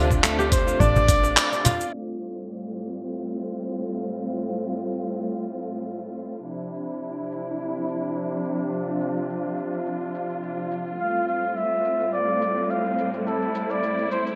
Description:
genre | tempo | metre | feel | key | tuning
organic downtempo | 106 BPM | 4/4 | swing 54% on 16ths | unclear | A4 = 440 Hz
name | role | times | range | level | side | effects
trumpet with bucket mute | melody | 0.0-1.7, 11.0-14.2 s | A4 to F5 | -27 LUFS | equal | delay
rich chamber string section | sustained chords | 0.0-14.4 s | A2 to F4 | -30 LUFS | equal | vintage 12-bit sampler grit, sidechain pumping, low-pass filter
kora | arpeggios | 0.0-3.2 s | A3 to D5 | -30 LUFS | equal | delay
woody FM bass | bass | 0.0-1.4 s | A1 to D2 | -27 LUFS | equal | tube saturation, sidechain pumping
dusty soul sampler-style drum kit | drums | 0.1-14.4 s | handclaps, hi-hat, shaker | -25 LUFS | equal | low-pass filter on perc, low-pass filter on hats, low-pass filter on snare, low-pass filter on room, gated reverb
electronic kick drum | drums | 0.1-1.2 s | none | -25 LUFS | equal | none
cajon | percussion | 0.1-1.9 s | none | -28 LUFS | equal | none
room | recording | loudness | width
wet plate reverb, RT60 1.2 s, studio ambience | bright 1980s-style digital production, low-pass filter | -26 LUFS | mono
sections
0.0-1.9 A section; 1.9-14.4 B section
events
break 1.4-1.9; band accent 1.4; filter sweep on string section 1.9-14.4; filter sweep 1.9-14.4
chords
0.0 Dm7; 6.5 Dm9; 11.0 G9sus4

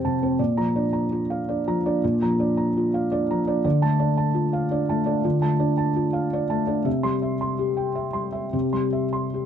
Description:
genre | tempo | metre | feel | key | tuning
neoclassical minimalist piano | 110 BPM | 3/4 | rubato | D minor | A4 = 440 Hz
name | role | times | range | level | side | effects
felt-muted upright piano | solo | 0.0-9.5 s | F2 to C6 | -21 LUFS | equal | none
room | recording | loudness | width
light reverb | none | -21 LUFS | side -8 dB against mid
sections
0.0-9.5 A section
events
none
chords
0.4 Bb; 3.6 Dm; 6.9 C

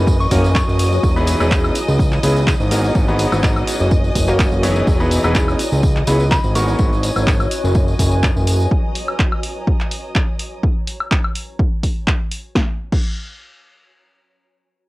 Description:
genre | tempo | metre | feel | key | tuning
piano house | 125 BPM | 4/4 | swing 54% on 16ths | unclear | A4 = 439 Hz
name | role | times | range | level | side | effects
warm studio violin section | sustained chords | 0.0-10.6 s | D#5 to D#6 | -29 LUFS | left 1 dB | sidechain pumping, cassette tape
bright upright piano | riff | 0.0-6.9 s | G#2 to D#5 | -21 LUFS | equal | vintage 12-bit sampler grit, sidechain pumping, cassette tape
fat analog bass | bass | 0.0-8.7 s | E1 to C#2 | -17 LUFS | equal | sidechain pumping
granular cloud pad | texture | 0.0-8.7 s | E4 to F#4 | -25 LUFS | equal | built-in reverb, sidechain pumping, cassette tape
electronic kick drum | drums | 0.1-13.1 s | none | -18 LUFS | equal | cassette tape
tambourine | percussion | 0.1-8.7 s | none | -31 LUFS | equal | none
soft synth bell | melody | 0.2-1.0, 6.3-6.8 s | B5 to C#6 | -25 LUFS | equal | chorus, cassette tape, analog delay
punchy analog drum machine | drums | 0.3-13.1 s | crash cymbal, handclaps, hi-hat, snare drum, woodblock | -23 LUFS | equal | cassette tape
room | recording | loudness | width
light reverb | home recording on cassette | -14 LUFS | side -19 dB against mid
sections
0.0-12.6 A section; 12.6-14.9 B section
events
drop 0.0-12.6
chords
0.1 F#; 1.0 Emaj7; 1.8 C#m7; 2.7 G#m7; 3.9 F#; 4.9 Emaj7; 5.6 C#m7; 6.6 G#m7; 7.8 F#; 8.7 N.C.

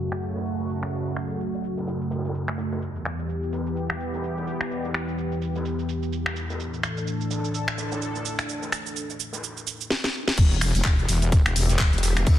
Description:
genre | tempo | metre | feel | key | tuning
bass house | 127 BPM | 4/4 | swing 57% on 16ths | E dorian | A4 = 440 Hz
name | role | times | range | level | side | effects
sweeping resonant pad | sustained chords | 0.0-12.4 s | E2 to E5 | -28 LUFS | equal | chorus, sidechain pumping
garage drum kit | drums | 0.1-12.4 s | cabasa, crash cymbal, finger snaps, handclaps, hi-hat, snare drum | -28 LUFS | equal | studio reverb, soft clipping on snare
raw garage drum kit | drums | 0.2-12.4 s | hi-hat, snare drum, tambourine | -40 LUFS | left 1 dB | sidechain pumping on hats, high-pass filter on hats, low-pass filter on hats, studio reverb, high-pass filter on snare, low-pass filter on snare, sidechain pumping on perc, high-pass filter on perc, low-pass filter on perc, high-pass filter on room, low-pass filter on room
wobble bass | bass | 10.4-12.4 s | E1 to D2 | -22 LUFS | equal | chorus, tube saturation, sidechain pumping
electronic kick drum | drums | 10.4-12.4 s | none | -19 LUFS | equal | studio reverb
room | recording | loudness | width
light reverb, small room ambience | dense, heavily limited modern master, low-pass filter | -24 LUFS | side -12 dB against mid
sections
0.0-10.4 A section; 10.4-12.4 B section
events
filter sweep 0.0-10.4; drum fill 9.9-10.4; drop 10.4-12.4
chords
0.0 F#m; 2.8 Em; 6.6 Asus4; 10.4 Em

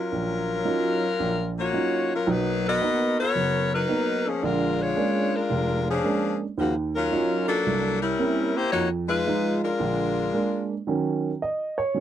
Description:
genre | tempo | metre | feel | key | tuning
jazz | 112 BPM | 4/4 | swing 69% on 8ths | Eb minor | A4 = 439 Hz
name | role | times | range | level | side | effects
clear saxophone section | melody | 0.0-10.7 s | Db3 to D#5 | -24 LUFS | left 3 dB | none
warm upright piano | accompaniment | 0.1-12.0 s | F1 to Eb5 | -26 LUFS | right 4 dB | none
room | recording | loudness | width
light reverb | dry, close 1970s-style studio recording | -22 LUFS | side -10 dB against mid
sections
0.0-10.9 A section; 10.9-12.0 B section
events
upright piano solo 10.9-12.0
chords
0.0 Ebm9; 2.3 Bmaj7; 4.4 Bb7#9; 6.6 Ebm9; 7.6 C7b9; 8.7 Fm7b5; 9.8 Bb7; 10.9 Ebm7

